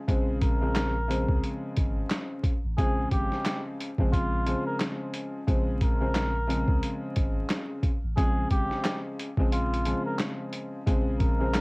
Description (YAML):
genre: hip hop, boom-bap hip-hop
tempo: 89 BPM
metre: 4/4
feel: swing 60% on 16ths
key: Bb dorian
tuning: A4 = 440 Hz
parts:
  - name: warm upright piano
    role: accompaniment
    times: 0.0-11.6 s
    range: Db3 to C4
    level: -31 LUFS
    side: left 1 dB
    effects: cassette tape, high-pass filter, low-pass filter
  - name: saturated sub bass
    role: bass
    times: 0.1-11.6 s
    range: Ab1 to Db2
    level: -30 LUFS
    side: equal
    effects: none
  - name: boom bap sampler-style drum kit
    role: drums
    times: 0.1-11.6 s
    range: handclaps, hi-hat, kick drum, snare drum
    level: -27 LUFS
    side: equal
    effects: none
  - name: trumpet with cup mute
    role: melody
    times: 0.4-11.6 s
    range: F4 to Bb4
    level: -33 LUFS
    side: equal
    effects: high-pass filter, low-pass filter, cassette tape
room: little or no reverb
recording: home recording on cassette, vinyl crackle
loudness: -25 LUFS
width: side -30 dB against mid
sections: 0.0-10.9 A section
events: break 9.5-10.9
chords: 0.0 Bbm9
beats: | 0.08 0.76 1.43 2.10 | 2.78 3.45 4.12 4.80 | 5.47 6.15 6.82 7.50 | 8.17 8.84 9.52 10.19 | 10.87 11.54